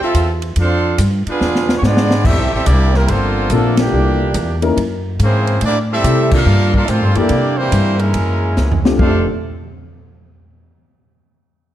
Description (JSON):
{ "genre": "jazz, big band swing", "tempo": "142 BPM", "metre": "4/4", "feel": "swing 66% on 8ths", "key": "F major", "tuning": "A4 = 442 Hz", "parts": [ { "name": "brilliant trumpet section", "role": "melody", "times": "0.0-9.3 s", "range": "G3 to F5", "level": "-20 LUFS", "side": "right 1 dB", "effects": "none" }, { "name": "mellow trombone section", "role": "second line", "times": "0.0-9.2 s", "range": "F2 to F4", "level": "-21 LUFS", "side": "right 2 dB", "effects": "none" }, { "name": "upright bass", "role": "bass", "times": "0.0-9.2 s", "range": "F1 to C3", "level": "-16 LUFS", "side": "equal", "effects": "none" }, { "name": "swinging big-band drum kit", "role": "drums", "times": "0.1-9.1 s", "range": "crash cymbal, hi-hat, kick drum, ride cymbal, snare drum, toms", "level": "-20 LUFS", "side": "equal", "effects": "none" }, { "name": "warm upright piano", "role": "accompaniment", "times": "3.5-9.3 s", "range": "A3 to Bb4", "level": "-19 LUFS", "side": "left 4 dB", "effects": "none" } ], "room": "light reverb", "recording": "dark, warm production", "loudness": "-12 LUFS", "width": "side -12 dB against mid", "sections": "0.0-2.2 A section; 2.2-9.0 B section; 9.0-10.7 C section", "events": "drum fill 1.4-2.2, 8.6-9.0; band accent 3.7, 6.2", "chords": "0.0 F69; 1.4 E7b9; 2.2 Am7; 3.1 Gm11; 3.9 C13; 4.8 Gb9; 5.6 Am7; 6.5 Gm11; 7.3 C9; 8.1 Gb9; 9.0 F69" }